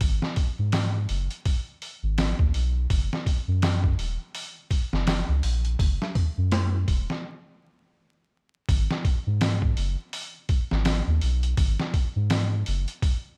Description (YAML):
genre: trip hop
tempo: 83 BPM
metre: 4/4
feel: swing 59% on 16ths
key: G# minor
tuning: A4 = 440 Hz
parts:
  - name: soft dub sub bass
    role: bass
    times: 0.0-12.9 s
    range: D#1 to G#2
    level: -27 LUFS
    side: equal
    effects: none
  - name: trip hop sampler-style drum kit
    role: drums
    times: 0.0-13.2 s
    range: hi-hat, kick drum, snare drum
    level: -28 LUFS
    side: equal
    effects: studio reverb
room: little or no reverb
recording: vinyl crackle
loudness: -26 LUFS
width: mono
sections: 0.0-8.7 A section; 8.7-13.4 B section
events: stop 7.2-8.7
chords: none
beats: | 0.01 0.73 1.46 2.18 | 2.90 3.62 4.35 5.07 | 5.79 6.52 7.24 7.96 | 8.69 9.41 10.13 10.85 | 11.58 12.30 13.02